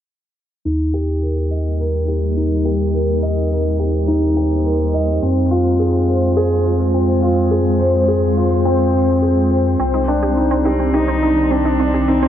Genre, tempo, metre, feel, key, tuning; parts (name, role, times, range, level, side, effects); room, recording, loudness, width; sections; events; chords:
electronica; 105 BPM; 4/4; straight; Eb major; A4 = 444 Hz
granular cloud pad; sustained chords; 1.4-12.3 s; Eb3 to G5; -22 LUFS; equal; built-in reverb
dark grand piano; riff; 0.7-12.3 s; C4 to Eb5; -17 LUFS; left 1 dB; digital delay
warm sub bass; bass; 0.7-12.3 s; C2 to F2; -19 LUFS; equal
analog pluck; arpeggios; 9.8-12.3 s; C4 to G4; -24 LUFS; right 4 dB; chorus, digital delay
rich cello; melody; 10.7-12.3 s; C4 to Eb4; -20 LUFS; equal
moderate huge ambient reverb, RT60 8.3 s; low-pass filter; -14 LUFS; side -10 dB against mid
0.7-12.3 A section
filter sweep 0.7-12.3
0.7 Eb; 5.2 Fm; 9.8 Cmadd9